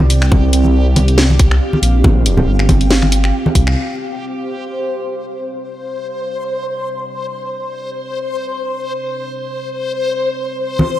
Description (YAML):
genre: deep dubstep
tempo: 139 BPM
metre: 4/4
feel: swing 55% on 16ths, half-time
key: unclear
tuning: A4 = 441 Hz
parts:
  - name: deep dark ambient pad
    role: sustained chords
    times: 0.0-11.0 s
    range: C4 to F5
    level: -24 LUFS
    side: right 2 dB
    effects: chorus, built-in reverb
  - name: dark detuned saw bass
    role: bass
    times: 0.0-3.8 s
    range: G1 to C2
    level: -13 LUFS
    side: equal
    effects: tube saturation
  - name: congas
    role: percussion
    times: 0.0-3.5, 10.8-10.9 s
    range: none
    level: -17 LUFS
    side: equal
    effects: none
  - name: backwards swelling texture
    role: texture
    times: 0.2-11.0 s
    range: G4 to C5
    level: -22 LUFS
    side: left 2 dB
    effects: built-in reverb
  - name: garage drum kit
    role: drums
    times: 0.1-3.7 s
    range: finger snaps, hi-hat, snare drum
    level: -18 LUFS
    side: equal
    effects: small room ambience
  - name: electronic kick drum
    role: drums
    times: 0.3-3.6 s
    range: none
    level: -14 LUFS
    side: equal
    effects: small room ambience
room: light reverb, digital ambience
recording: dry, gritty hardware recording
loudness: -14 LUFS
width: side -13 dB against mid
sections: 0.0-3.8 A section; 3.8-11.0 B section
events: band accent 3.7; filter sweep on ambient pad 3.8-11.0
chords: 0.0 C5